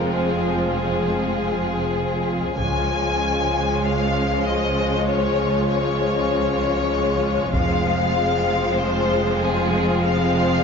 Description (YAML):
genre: cinematic, epic orchestral film score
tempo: 97 BPM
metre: 4/4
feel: straight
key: F minor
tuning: A4 = 440 Hz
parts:
  - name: rich chamber violin section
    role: melody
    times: 0.0-10.6 s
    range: Ab4 to Ab5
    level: -24 LUFS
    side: left 6 dB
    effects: none
  - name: dark symphonic violin section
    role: second line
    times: 0.0-10.6 s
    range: C4 to F4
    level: -27 LUFS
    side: left 2 dB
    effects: none
  - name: rich symphonic viola section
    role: accompaniment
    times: 0.0-10.6 s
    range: F3 to Ab3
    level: -26 LUFS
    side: right 3 dB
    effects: none
  - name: warm French horn section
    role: sustained chords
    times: 0.0-10.6 s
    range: F3 to Ab4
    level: -28 LUFS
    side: left 6 dB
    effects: none
  - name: dark symphonic cello section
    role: bass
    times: 0.0-10.6 s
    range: Db2 to F2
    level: -27 LUFS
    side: right 2 dB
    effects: none
  - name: warm symphonic double bass section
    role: bass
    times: 0.0-10.6 s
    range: F1 to Db2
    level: -27 LUFS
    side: right 2 dB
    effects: none
  - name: taiko ensemble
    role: drums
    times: 2.6-3.8, 7.5-8.7 s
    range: none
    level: -27 LUFS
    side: equal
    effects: none
  - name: timpani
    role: percussion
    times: 7.5-8.4 s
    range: F2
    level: -32 LUFS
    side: equal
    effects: none
room: moderate scoring stage reverb, RT60 1.7 s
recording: nothing above 7.5 kHz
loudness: -18 LUFS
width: side -6 dB against mid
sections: 0.0-10.6 A section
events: none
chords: 0.0 Fm; 2.6 Db; 7.5 Fm